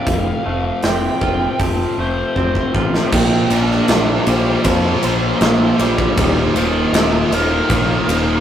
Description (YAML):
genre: quiet-loud alternative rock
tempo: 79 BPM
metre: 4/4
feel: straight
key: unclear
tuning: A4 = 439 Hz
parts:
  - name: biting lead guitar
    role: melody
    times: 0.0-8.4 s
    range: F3 to A5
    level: -23 LUFS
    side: right 2 dB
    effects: overdrive
  - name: twangy electric guitar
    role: arpeggios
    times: 0.0-3.1 s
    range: F2 to F4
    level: -27 LUFS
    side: right 5 dB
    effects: none
  - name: fuzz guitar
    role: riff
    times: 0.0-8.4 s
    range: Eb2 to Bb3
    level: -21 LUFS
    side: left 4 dB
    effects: distortion
  - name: growling fingered electric bass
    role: bass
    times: 0.1-8.4 s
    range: Eb1 to F2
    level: -22 LUFS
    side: equal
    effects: overdrive
  - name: big rock drum kit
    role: drums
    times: 0.1-8.3 s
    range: crash cymbal, hi-hat, kick drum, ride cymbal, snare drum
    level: -18 LUFS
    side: equal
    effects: none
  - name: scooped high-gain guitar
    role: riff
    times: 3.1-8.4 s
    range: Eb2 to Bb3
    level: -21 LUFS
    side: right 5 dB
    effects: distortion
  - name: thick fuzz guitar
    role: riff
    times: 3.1-8.4 s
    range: Eb2 to Bb3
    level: -24 LUFS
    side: equal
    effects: none
room: moderate studio reverb, RT60 0.6 s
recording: rough rehearsal-room recording, tube saturation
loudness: -14 LUFS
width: side -10 dB against mid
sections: 0.0-3.1 A section; 3.1-8.4 B section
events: drum fill 2.4-3.1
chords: 0.1 F; 3.1 Bb; 6.2 Ebsus2